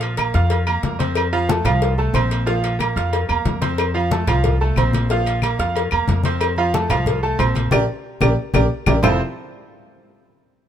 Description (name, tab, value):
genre	latin, salsa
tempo	183 BPM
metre	4/4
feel	straight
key	F major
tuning	A4 = 439 Hz
part	bright concert grand piano	accompaniment	0.0-9.2 s	F3 to F6	-22 LUFS	right 3 dB	none
part	upright bass	bass	0.0-9.2 s	F1 to F2	-20 LUFS	equal	none
part	agogo bells and timbales	percussion	0.0-9.1 s	none	-26 LUFS	right 5 dB	none
part	congas	percussion	0.0-9.1 s	none	-24 LUFS	left 3 dB	none
part	cowbell and bongos	percussion	0.0-9.1 s	none	-27 LUFS	left 6 dB	none
part	claves	percussion	0.2-9.1 s	none	-26 LUFS	left 7 dB	none
room	light reverb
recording	minimal, uncompressed stereo recording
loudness	-16 LUFS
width	side -9 dB against mid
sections	0.0-9.0 A section; 9.0-10.3 B section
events	band accent 7.7-9.0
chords	0.0 Bb5; 1.2 F; 2.5 Bb5; 3.8 F; 5.1 Bb5; 6.4 F; 7.7 Bb6; 9.0 Fmaj7